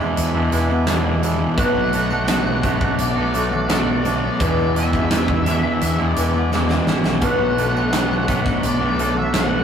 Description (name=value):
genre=rock, shoegaze and dream pop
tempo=85 BPM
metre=4/4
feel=straight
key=unclear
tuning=A4 = 437 Hz
part: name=fingerpicked twelve-string acoustic guitar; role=arpeggios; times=0.0-9.6 s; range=G#4 to A5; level=-28 LUFS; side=left 3 dB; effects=none
part: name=crunchy overdriven guitar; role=riff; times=0.0-9.6 s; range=E2 to B3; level=-27 LUFS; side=right 1 dB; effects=none
part: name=thick fuzz guitar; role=riff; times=0.0-9.6 s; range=E2 to B3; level=-24 LUFS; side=left 6 dB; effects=distortion
part: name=twangy electric guitar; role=riff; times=0.0-9.6 s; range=E2 to F#4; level=-23 LUFS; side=right 5 dB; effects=none
part: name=tambourine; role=percussion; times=0.0-9.5 s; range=none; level=-44 LUFS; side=right 5 dB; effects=none
part: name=growling fingered electric bass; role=bass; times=0.2-9.6 s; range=G#1 to E2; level=-24 LUFS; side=equal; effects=overdrive
part: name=big rock drum kit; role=drums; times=0.2-9.5 s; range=hi-hat, kick drum, snare drum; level=-23 LUFS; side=equal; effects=none
part: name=octave-fuzz lead guitar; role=melody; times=1.6-9.6 s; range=D5 to F#5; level=-26 LUFS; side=left 1 dB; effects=distortion
room=moderate small room reverb, RT60 0.6 s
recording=rough rehearsal-room recording, tube saturation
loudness=-16 LUFS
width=side -8 dB against mid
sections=0.0-9.6 A section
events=drum fill 6.5-7.2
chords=0.0 E7; 1.6 Bm7; 4.4 E7; 7.2 Bm7